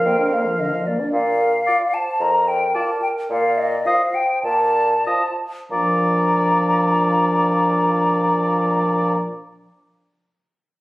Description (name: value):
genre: quick classical-period movement for wind quintet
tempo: 91-112 BPM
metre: 4/4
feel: straight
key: Bb major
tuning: A4 = 438 Hz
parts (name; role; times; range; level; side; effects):
- hollow concert flute; melody; 0.0-9.2 s; D5 to Bb5; -20 LUFS; left 1 dB; none
- clear oboe; second line; 0.0-9.2 s; D5 to F5; -23 LUFS; equal; none
- dark clarinet; accompaniment; 0.0-9.2 s; D4 to D5; -26 LUFS; right 1 dB; none
- warm French horn; accompaniment; 0.0-9.2 s; D3 to F4; -24 LUFS; equal; none
- warm bassoon; bass; 0.0-9.2 s; F2 to Bb2; -23 LUFS; right 1 dB; none
room: moderate recital hall reverb, RT60 1.2 s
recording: recorded on a phone in the room, club reverb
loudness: -16 LUFS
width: side -18 dB against mid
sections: 0.0-1.1 A section; 1.1-5.7 B section; 5.7-10.8 C section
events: slowing down 0.1-5.7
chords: 0.0 Bb; 3.3 F7/Bb; 5.7 Bb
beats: 0.05 0.59 | 1.13 1.67 2.20 2.75 | 3.30 3.87 4.45 5.06 | 5.71 6.36 7.01 7.65 | 8.30 8.95